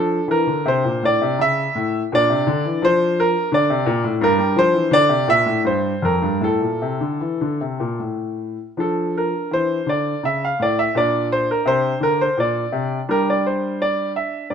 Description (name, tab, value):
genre	classical, baroque-style suite movement for grand piano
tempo	75-87 BPM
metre	3/4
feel	rubato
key	D minor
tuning	A4 = 441 Hz
part	clear concert grand piano	solo	0.0-14.5 s	F2 to F5	-17 LUFS	equal	none
room	moderate stone room reverb, RT60 1.2 s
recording	none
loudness	-17 LUFS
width	side -7 dB against mid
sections	0.0-8.8 A section; 8.8-14.5 A section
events	none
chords	0.0 Dm; 1.4 A/C#; 2.1 Bb; 4.2 Gm; 5.6 Fsus24; 6.4 Asus4; 8.0 N.C.; 8.8 Dm/F; 10.2 A/C#; 10.9 Bb; 13.1 G5